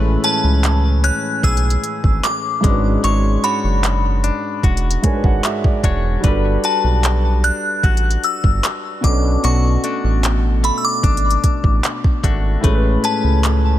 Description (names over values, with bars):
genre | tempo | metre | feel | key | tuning
contemporary R&B | 75 BPM | 4/4 | straight | A major | A4 = 440 Hz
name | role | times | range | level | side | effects
warm concert grand piano | accompaniment | 0.0-13.8 s | G#2 to G#5 | -22 LUFS | equal | none
direct-recorded clean electric guitar | arpeggios | 0.0-13.8 s | B2 to C#5 | -26 LUFS | left 7 dB | tape echo
round analog bass | bass | 0.0-13.8 s | E1 to C#2 | -16 LUFS | equal | none
glassy synth bell | melody | 0.2-13.8 s | A5 to F#6 | -21 LUFS | left 1 dB | chorus, phaser, tape echo
smooth R&B drum kit | drums | 0.2-13.6 s | handclaps, hi-hat, kick drum | -18 LUFS | equal | none
room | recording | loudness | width
little or no reverb | none | -14 LUFS | side -13 dB against mid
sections
0.0-13.8 A section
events
grand piano fill 4.6-6.2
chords
0.0 Amaj9; 2.6 E13; 6.2 Gmaj7; 9.0 Bm7; 12.6 Amaj9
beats
0.64 1.44 2.24 | 3.04 3.84 4.64 5.44 | 6.24 7.04 7.84 8.64 | 9.44 10.24 11.04 11.84 | 12.64 13.44